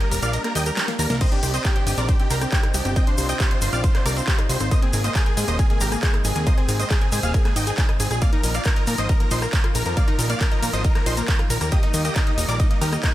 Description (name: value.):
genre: uplifting trance.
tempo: 137 BPM.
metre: 4/4.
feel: straight.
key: C minor.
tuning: A4 = 439 Hz.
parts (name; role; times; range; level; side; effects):
big supersaw lead; melody; 0.0-13.1 s; Eb4 to G5; -28 LUFS; equal; vintage 12-bit sampler grit, sidechain pumping, tape echo.
analog pluck; second line; 0.0-13.1 s; Eb5 to G6; -35 LUFS; equal; none.
lush unison pad; sustained chords; 0.0-13.1 s; C3 to G4; -32 LUFS; equal; chorus, sidechain pumping.
wide unison pluck; arpeggios; 0.0-13.1 s; Bb3 to Bb5; -32 LUFS; left 2 dB; sidechain pumping, digital delay.
big-room dance drum kit; drums; 0.0-13.1 s; crash cymbal, handclaps, hi-hat, ride cymbal, rim click, snare drum; -28 LUFS; right 1 dB; studio reverb.
fat analog bass; bass; 0.1-13.0 s; Eb1 to Bb2; -24 LUFS; equal; sidechain pumping.
tube shaker; percussion; 0.1-13.1 s; none; -32 LUFS; left 2 dB; none.
electronic kick drum; drums; 1.2-13.1 s; none; -20 LUFS; equal; studio reverb.
room: digital ambience.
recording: none.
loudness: -18 LUFS.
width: side -14 dB against mid.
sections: 0.0-13.1 A section.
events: kick drops out 0.3-1.2; drum fill 0.8-1.2.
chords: 0.0 Eb; 1.2 Cmadd9; 4.7 Abadd9; 8.2 Bbsus4; 11.7 Eb.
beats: 0.33 0.77 | 1.21 1.65 2.09 2.52 | 2.96 3.40 3.84 4.28 | 4.71 5.15 5.59 6.03 | 6.47 6.90 7.34 7.78 | 8.22 8.65 9.09 9.53 | 9.97 10.41 10.85 11.28 | 11.72 12.16 12.60 13.04.